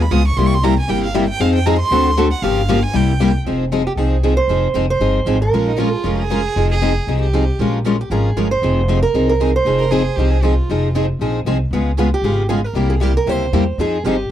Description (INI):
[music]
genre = acoustic string swing (jazz manouche)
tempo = 232 BPM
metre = 4/4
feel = swing 56% on 8ths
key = F minor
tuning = A4 = 440 Hz
[part]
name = warm violin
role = second line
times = 0.0-3.3, 5.7-7.7, 9.8-10.9 s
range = Eb4 to Eb6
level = -22 LUFS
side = right 4 dB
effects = none
[part]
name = picked steel-string acoustic guitar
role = accompaniment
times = 0.0-14.2 s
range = C3 to Bb4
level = -20 LUFS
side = left 7 dB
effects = none
[part]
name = picked steel-string acoustic guitar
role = accompaniment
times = 0.0-14.1 s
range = C3 to Bb4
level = -23 LUFS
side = right 8 dB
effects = none
[part]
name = upright bass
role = bass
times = 0.0-14.3 s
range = F1 to F2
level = -18 LUFS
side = equal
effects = none
[part]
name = picked acoustic archtop guitar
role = melody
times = 3.9-14.3 s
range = G4 to C5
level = -20 LUFS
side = right 4 dB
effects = none
[sound]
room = little or no reverb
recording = dry, close 1970s-style studio recording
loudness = -14 LUFS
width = side -11 dB against mid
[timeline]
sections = 0.0-3.5 A section; 3.5-14.3 B section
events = violin solo 0.0-3.5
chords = 0.4 C7; 1.4 Fm7; 1.9 D7; 2.4 Gm7b5; 2.9 C7; 3.5 Fm7; 5.5 Bbm7; 6.6 Fm9; 7.6 Bbm7; 8.6 Fm7; 11.7 Db7; 12.8 C7; 13.8 Fm9